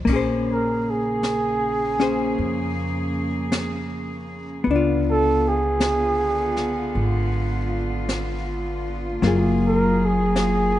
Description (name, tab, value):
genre	jazz ballad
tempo	53 BPM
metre	4/4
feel	swing 67% on 8ths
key	unclear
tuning	A4 = 438 Hz
part	hollow-body jazz guitar	accompaniment	0.0-10.8 s	Gb3 to C5	-23 LUFS	left 4 dB	none
part	upright bass	bass	0.0-10.8 s	Gb1 to F2	-26 LUFS	right 1 dB	none
part	rich studio cello section	sustained chords	0.1-10.8 s	Db3 to Ab4	-28 LUFS	right 1 dB	none
part	jazz brush drum kit	drums	0.1-10.8 s	brushed snare drum, crash cymbal, hi-hat, kick drum, snare drum	-28 LUFS	equal	none
part	trumpet with bucket mute	melody	0.5-10.8 s	Ab4 to Bb4	-22 LUFS	right 2 dB	none
room	light reverb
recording	rough home demo mix, nothing above 10.9 kHz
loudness	-20 LUFS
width	side -13 dB against mid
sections	0.1-10.8 A section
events	muted trumpet solo 0.1-10.8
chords	0.1 Bbm9; 4.7 Db7b9; 9.2 Gbmaj9